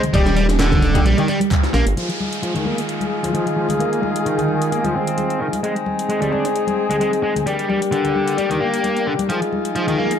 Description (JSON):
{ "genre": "breakbeat, breaks", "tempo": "131 BPM", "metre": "4/4", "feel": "swing 54% on 16ths", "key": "F dorian", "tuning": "A4 = 441 Hz", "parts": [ { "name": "lush unison pad", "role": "sustained chords", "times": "0.0-10.2 s", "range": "C3 to Ab5", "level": "-27 LUFS", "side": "right 4 dB", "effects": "chorus, phaser, vintage 12-bit sampler grit, sidechain pumping" }, { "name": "mellow horn section", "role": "stabs", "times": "0.0-10.2 s", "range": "G3 to Ab4", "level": "-22 LUFS", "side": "left 3 dB", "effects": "ping-pong delay" }, { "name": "garage drum kit", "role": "drums", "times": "0.0-10.2 s", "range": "handclaps, hi-hat", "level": "-32 LUFS", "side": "left 2 dB", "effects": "none" }, { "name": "congas", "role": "percussion", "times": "0.0-10.1 s", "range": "none", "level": "-27 LUFS", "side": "left 3 dB", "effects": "none" }, { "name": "biting overdriven guitar", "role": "riff", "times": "0.1-10.1 s", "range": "D3 to D4", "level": "-22 LUFS", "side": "equal", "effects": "tube saturation, low-pass filter, ping-pong delay" }, { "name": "dark detuned saw bass", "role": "bass", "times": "0.1-1.9 s", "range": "Eb1 to Bb1", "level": "-18 LUFS", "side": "equal", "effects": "none" }, { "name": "breakbeat sampler-style drum kit", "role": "drums", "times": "0.1-1.9 s", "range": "hi-hat, kick drum, snare drum", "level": "-18 LUFS", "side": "right 1 dB", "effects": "none" }, { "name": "downlifter", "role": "sound effects", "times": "2.0-5.6 s", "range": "none", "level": "-32 LUFS", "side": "right 1 dB", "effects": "none" } ], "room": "moderate plate reverb, RT60 1.1 s", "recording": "dark, warm production", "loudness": "-17 LUFS", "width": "side -8 dB against mid", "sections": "0.0-2.0 A section; 2.0-10.2 B section", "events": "band accent 1.5; filter sweep on overdriven electric guitar 2.0-10.2; filter sweep on analog synth pad 2.0-10.2", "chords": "0.1 Ebmaj7; 2.0 Fm7; 5.6 Ab; 7.5 Ebmaj7 (rootless); 9.3 Fm7" }